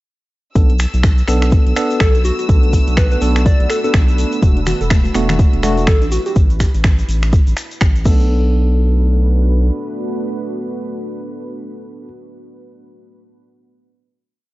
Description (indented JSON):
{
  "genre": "deep house",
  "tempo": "124 BPM",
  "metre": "4/4",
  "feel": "swing 59% on 16ths",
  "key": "B minor",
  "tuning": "A4 = 440 Hz",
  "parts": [
    { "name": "deep dark ambient pad", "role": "sustained chords", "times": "1.6-12.1 s", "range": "A3 to B4", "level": "-28 LUFS", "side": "equal", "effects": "chorus, built-in reverb, sidechain pumping" },
    { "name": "tine electric piano", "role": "stabs", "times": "0.6-12.1 s", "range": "A3 to A4", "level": "-22 LUFS", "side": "equal", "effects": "medium stereo tremolo, sidechain pumping" },
    { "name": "round analog bass", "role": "bass", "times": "0.6-9.7 s", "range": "E1 to B1", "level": "-16 LUFS", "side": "equal", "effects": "tube saturation, sidechain pumping" },
    { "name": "deep house drum kit", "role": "drums", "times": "0.6-8.2 s", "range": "crash cymbal, finger snaps, hi-hat", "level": "-25 LUFS", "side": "equal", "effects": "none" },
    { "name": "electronic kick drum", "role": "drums", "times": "0.6-8.2 s", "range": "none", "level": "-13 LUFS", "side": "equal", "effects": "none" },
    { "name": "egg shaker", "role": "percussion", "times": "0.6-8.3 s", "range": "none", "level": "-35 LUFS", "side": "left 3 dB", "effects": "none" },
    { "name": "dark studio violin section", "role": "texture", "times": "0.6-6.4 s", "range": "E6", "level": "-30 LUFS", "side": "left 2 dB", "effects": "sidechain pumping" },
    { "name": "soft struck synth lead", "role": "melody", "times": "2.0-6.3 s", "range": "F#4 to D5", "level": "-22 LUFS", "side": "equal", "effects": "chorus, tape echo" },
    { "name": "congas", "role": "percussion", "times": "4.4-5.7 s", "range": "none", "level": "-24 LUFS", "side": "left 2 dB", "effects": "none" },
    { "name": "soft round pluck", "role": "arpeggios", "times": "4.6-8.5 s", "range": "A3 to A4", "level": "-25 LUFS", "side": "right 2 dB", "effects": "analog chorus, sidechain pumping, tape echo" }
  ],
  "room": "little or no reverb",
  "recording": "dry, gritty hardware recording, nothing above 7.8 kHz",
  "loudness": "-12 LUFS",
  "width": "side -18 dB against mid",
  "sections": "0.6-8.3 drop; 8.3-12.2 final hit",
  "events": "drop 0.6-8.3",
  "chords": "0.6 Bm7; 4.4 E9sus4; 6.1 A13; 8.1 Bm7",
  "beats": "| 0.55 1.04 1.52 2.00 | 2.49 2.97 3.46 3.94 | 4.42 4.91 5.39 5.88 | 6.36 6.84 7.33 7.81 | 8.30 8.78 9.26 9.75 | 10.23 10.71 11.20 11.68"
}